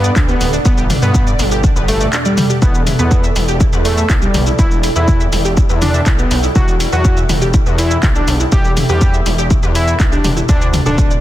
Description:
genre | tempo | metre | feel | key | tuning
melodic techno | 122 BPM | 4/4 | straight | E minor | A4 = 441 Hz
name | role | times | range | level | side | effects
fat analog lead | melody | 0.0-11.1 s | G3 to G4 | -19 LUFS | equal | sidechain pumping, ping-pong delay
wide unison pluck | arpeggios | 0.0-11.2 s | D4 to E5 | -23 LUFS | right 1 dB | sidechain pumping, ping-pong delay
gritty driven synth bass | bass | 0.0-11.2 s | D1 to G2 | -18 LUFS | equal | sidechain pumping
overtone-sweeping drone | drone | 0.5-11.2 s | E2 to B2 | -27 LUFS | equal | none
punchy analog drum machine | drums | 0.0-11.2 s | handclaps, hi-hat, shaker, toms | -20 LUFS | left 2 dB | none
ethereal airy pad | texture | 0.0-11.2 s | A4 to G5 | -25 LUFS | right 2 dB | ensemble chorus, built-in reverb, tremolo, sidechain pumping
electronic kick drum | drums | 0.2-11.1 s | none | -14 LUFS | equal | none
room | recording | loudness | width
digital ambience | dense, heavily limited modern master | -11 LUFS | side -14 dB against mid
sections
0.0-11.2 A section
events
none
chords
0.0 Gmaj7; 2.6 Em; 10.5 Dadd9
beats
0.16 | 0.66 1.15 1.64 2.13 | 2.62 3.11 3.60 4.10 | 4.59 5.08 5.57 6.06 | 6.56 7.05 7.54 8.03 | 8.52 9.02 9.51 10.00 | 10.49 10.98

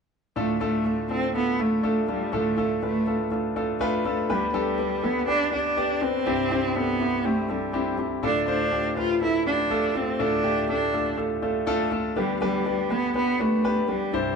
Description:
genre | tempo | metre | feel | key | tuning
piano-driven pop | 122 BPM | 4/4 | straight | unclear | A4 = 440 Hz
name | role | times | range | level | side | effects
warm cello | melody | 0.4-14.3 s | G3 to F4 | -25 LUFS | right 2 dB | none
clear grand piano | accompaniment | 0.4-14.4 s | C2 to D5 | -25 LUFS | left 1 dB | none
room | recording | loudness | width
wet studio reverb, RT60 0.9 s | band playing live in one room | -22 LUFS | side -5 dB against mid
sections
0.4-14.4 A section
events
none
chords
0.4 Dm; 4.3 G/D; 6.3 Cadd9; 8.2 Dm; 12.2 G/D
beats
| 0.36 0.85 1.34 1.84 | 2.33 2.82 3.31 3.80 | 4.30 4.79 5.28 5.77 | 6.26 6.75 7.25 7.74 | 8.23 8.72 9.21 9.71 | 10.20 10.69 11.18 11.67 | 12.16 12.66 13.15 13.64 | 14.13

